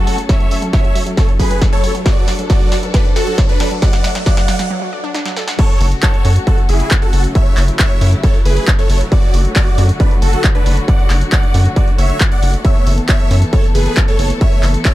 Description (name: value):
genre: uplifting trance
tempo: 136 BPM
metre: 4/4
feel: straight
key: F# minor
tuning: A4 = 439 Hz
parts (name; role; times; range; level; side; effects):
- big supersaw lead; melody; 0.0-14.9 s; D4 to F#5; -21 LUFS; right 1 dB; phaser, sidechain pumping, dub echo
- muted studio string section; sustained chords; 0.0-14.9 s; C#3 to A4; -25 LUFS; left 2 dB; sidechain pumping
- wide unison pluck; arpeggios; 0.0-5.5 s; F#3 to F#5; -26 LUFS; right 2 dB; sidechain pumping, dub echo
- riser; sound effects; 1.3-4.7 s; none; -29 LUFS; equal; none
- punchy analog drum machine; drums; 0.1-14.9 s; crash cymbal, handclaps, hi-hat, snare drum; -22 LUFS; equal; high-pass filter on snare, high-pass filter on hats, high-pass filter on cymbals, high-pass filter on room
- electronic kick drum; drums; 0.3-14.9 s; none; -13 LUFS; equal; distortion
- tight sequencer bass; bass; 5.8-14.8 s; F#1 to F#2; -13 LUFS; equal; sidechain pumping
room: digital ambience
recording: dark, warm production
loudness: -11 LUFS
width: side -16 dB against mid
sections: 0.0-5.6 A section; 5.6-14.9 B section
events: build-up 0.0-5.6; drum fill 0.0-4.7, 5.1-5.6; filter sweep on synth arpeggio sound 0.0-5.6; riser 1.3-4.7; break 4.7-5.6; drop 5.6-14.9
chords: 0.0 F#m; 2.1 D/F#; 5.6 F#m; 9.1 D/F#; 12.6 Asus2/F#